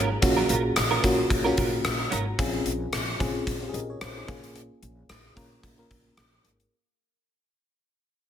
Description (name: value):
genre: 1980s-style pop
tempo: 111 BPM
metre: 4/4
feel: swing 55% on 16ths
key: Bb minor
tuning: A4 = 440 Hz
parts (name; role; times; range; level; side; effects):
- FM electric piano with tremolo; accompaniment; 0.0-6.7 s; Bb3 to Eb5; -28 LUFS; equal; phaser
- direct-recorded clean electric guitar; riff; 0.0-2.3 s; Gb3 to Bb4; -30 LUFS; right 5 dB; analog chorus, tape echo
- upright bass; bass; 0.0-6.6 s; Ab1 to Bb1; -32 LUFS; equal; none
- gated 80s drum kit; drums; 0.2-6.7 s; hi-hat, kick drum, rim click; -27 LUFS; equal; gated reverb
room: moderate lush hall reverb, RT60 1.6 s, small room ambience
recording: none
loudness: -23 LUFS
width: side -9 dB against mid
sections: 0.0-6.7 A section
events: fade-out 0.0-6.7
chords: 0.0 Gbmaj7; 2.4 Dbmaj7/Bb; 4.3 Bbm7